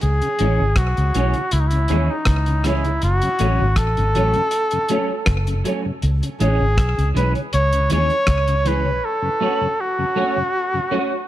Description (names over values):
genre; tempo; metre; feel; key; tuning
roots reggae; 80 BPM; 4/4; straight; C# minor; A4 = 440 Hz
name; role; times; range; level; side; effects
clear flugelhorn; melody; 0.0-11.3 s; D#4 to C#5; -21 LUFS; equal; tape echo
vintage muted fingered electric bass; bass; 0.0-9.0 s; F#1 to D#2; -19 LUFS; equal; none
cloth-damped thuddy drum kit; drums; 0.0-8.8 s; hi-hat, kick drum, rim click; -23 LUFS; equal; slapback echo
mellow tonewheel organ; accompaniment; 0.2-11.0 s; F#2 to C#4; -28 LUFS; left 2 dB; overdrive, chorus vibrato, slow rotary speaker
clean electric guitar; accompaniment; 0.4-11.1 s; E3 to F#4; -26 LUFS; right 4 dB; ensemble chorus, tape echo
room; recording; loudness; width
light reverb, small room ambience; none; -17 LUFS; side -13 dB against mid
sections
0.0-11.3 A section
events
break 9.0-11.3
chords
0.0 C#m; 3.0 F#m; 6.0 C#m; 9.0 F#m